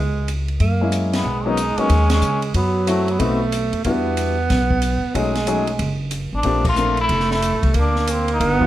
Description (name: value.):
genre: jazz, small-group swing and bop.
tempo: 184 BPM.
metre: 4/4.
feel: swing 63% on 8ths.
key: unclear.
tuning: A4 = 443 Hz.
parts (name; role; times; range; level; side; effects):
breathy alto saxophone; second line; 0.0-8.7 s; F#3 to B3; -22 LUFS; right 4 dB; none.
upright bass; bass; 0.0-8.7 s; F1 to C#3; -21 LUFS; equal; none.
open jazz drum kit; drums; 0.3-8.7 s; crash cymbal, hi-hat, kick drum, ride cymbal, snare drum; -27 LUFS; equal; none.
warm concert grand piano; accompaniment; 0.8-8.7 s; D#3 to Bb4; -24 LUFS; left 4 dB; none.
trombone with metal mute; melody; 1.2-3.4, 6.4-8.6 s; A3 to F4; -22 LUFS; left 2 dB; none.
room: light reverb.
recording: none.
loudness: -17 LUFS.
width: side -14 dB against mid.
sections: 0.0-1.2 A section; 1.2-8.7 B section.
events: band accent 1.1, 2.1, 6.6.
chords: 0.0 C#5; 0.6 F#7; 1.2 Bmaj9; 2.5 F#m7b5; 3.2 B7b9; 3.8 Em9; 5.1 B13; 6.5 Bb69; 7.8 C7sus2/D.